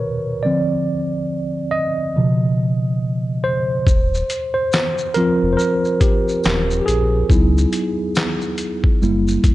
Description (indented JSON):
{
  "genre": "lo-fi hip hop",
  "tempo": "70 BPM",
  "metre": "4/4",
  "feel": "swing 60% on 16ths",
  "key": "Eb major",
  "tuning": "A4 = 443 Hz",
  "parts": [
    { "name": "mellow tine electric piano", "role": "accompaniment", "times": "0.0-9.5 s", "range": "A#2 to Eb5", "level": "-18 LUFS", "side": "right 1 dB", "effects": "medium stereo tremolo, cassette tape, low-pass filter" },
    { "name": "sub bass with octave", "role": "bass", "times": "3.9-9.5 s", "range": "Eb1 to Db2", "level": "-19 LUFS", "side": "equal", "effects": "none" },
    { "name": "boom bap sampler-style drum kit", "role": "drums", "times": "3.9-9.5 s", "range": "handclaps, hi-hat, kick drum, shaker, snare drum", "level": "-18 LUFS", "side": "equal", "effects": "none" },
    { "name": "tambourine", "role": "percussion", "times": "4.7-8.4 s", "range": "none", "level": "-38 LUFS", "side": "left 8 dB", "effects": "none" }
  ],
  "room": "light reverb, digital ambience",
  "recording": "cassette tape, nothing above 10.7 kHz",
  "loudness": "-16 LUFS",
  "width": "side -16 dB against mid",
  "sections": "0.0-3.9 A section; 3.9-9.5 B section",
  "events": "tine electric piano solo 0.0-3.9, 3.9-9.5",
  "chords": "0.4 Dm7; 2.2 Db9; 3.9 Eb69; 7.3 Dbm11; 9.0 Gb7b9"
}